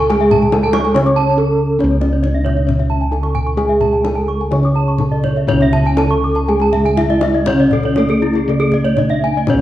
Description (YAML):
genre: Balinese gamelan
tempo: 120-142 BPM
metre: 4/4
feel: straight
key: C# pelog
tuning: A4 = 440 Hz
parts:
  - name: gamelan-type bronze metallophone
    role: melody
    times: 0.0-9.6 s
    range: A3 to C#5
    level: -19 LUFS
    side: right 1 dB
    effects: none
  - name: gamelan-type bronze metallophone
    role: accompaniment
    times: 0.0-9.6 s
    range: C#3 to C#4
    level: -22 LUFS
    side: right 1 dB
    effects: none
  - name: gamelan-type bronze metallophone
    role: arpeggios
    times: 0.0-9.6 s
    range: E4 to D6+35c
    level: -22 LUFS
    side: left 5 dB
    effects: none
  - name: gamelan-type bossed gongs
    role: bass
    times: 0.0-9.6 s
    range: C#2 to G#4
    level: -16 LUFS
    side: equal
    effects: none
  - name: kendang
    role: percussion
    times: 0.0-9.6 s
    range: none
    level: -24 LUFS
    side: left 4 dB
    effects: none
  - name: gamelan-type bronze metallophone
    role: arpeggios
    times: 0.3-9.2 s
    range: G#4 to C#6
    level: -22 LUFS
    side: right 4 dB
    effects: none
room: moderate recital hall reverb, RT60 1.4 s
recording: worn, warbling old tape, cassette tape, warbly pitch drift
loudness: -12 LUFS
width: side -13 dB against mid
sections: 0.0-5.5 A section; 5.5-9.6 B section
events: none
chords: none